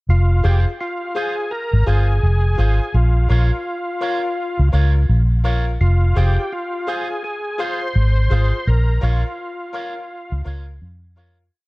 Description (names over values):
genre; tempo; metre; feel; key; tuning
reggae; 84 BPM; 4/4; swing 60% on 16ths; F minor; A4 = 441 Hz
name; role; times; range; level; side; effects
overdriven tonewheel organ; melody; 0.1-10.4 s; F4 to C5; -25 LUFS; equal; chorus vibrato, tape echo
vintage muted fingered electric bass; bass; 0.1-11.5 s; F1 to F2; -15 LUFS; equal; none
electric guitar with an envelope filter; accompaniment; 0.4-11.4 s; F4 to Db5; -32 LUFS; right 4 dB; tape echo
bright concert grand piano; stabs; 0.4-11.4 s; F4 to F5; -28 LUFS; left 3 dB; none
room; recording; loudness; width
little or no reverb; dark, warm production; -16 LUFS; side -22 dB against mid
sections
0.1-11.5 verse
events
fade-out 8.7-11.5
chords
0.1 Fm; 2.9 Bbm; 5.8 Fm; 8.7 Bbm